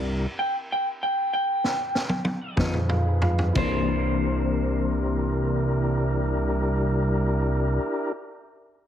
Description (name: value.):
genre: slow blues.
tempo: 60-67 BPM (dotted quarters).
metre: 12/8.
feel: straight.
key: C mixolydian.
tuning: A4 = 440 Hz.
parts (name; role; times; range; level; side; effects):
tonewheel organ; sustained chords; 0.0-8.1 s; D4 to Cb5; -29 LUFS; left 1 dB; slow rotary speaker.
fat analog bass; bass; 0.0-7.8 s; C2 to F2; -24 LUFS; right 1 dB; none.
electric guitar through a small old amp; melody; 0.4-7.8 s; C5 to G5; -27 LUFS; right 1 dB; none.
vintage drum kit; drums; 1.6-3.7 s; crash cymbal, kick drum, snare drum, toms; -29 LUFS; equal; none.
clean electric guitar; accompaniment; 2.6-7.9 s; C3 to Eb4; -29 LUFS; left 6 dB; harmonic tremolo.
warm upright piano; accompaniment; 2.6-7.8 s; E4 to F5; -34 LUFS; right 3 dB; none.
room: light reverb.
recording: heavily compressed radio sound.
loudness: -22 LUFS.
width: side -10 dB against mid.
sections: 0.0-3.6 A section; 3.6-7.6 B section.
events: slowing down 0.0-3.6; stop 0.0-2.6; drum fill 1.6-3.6.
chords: 0.0 C9; 2.6 Db9; 3.6 C9.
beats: 0.70 1.62 2.57 | 3.55 4.55 5.55 6.55.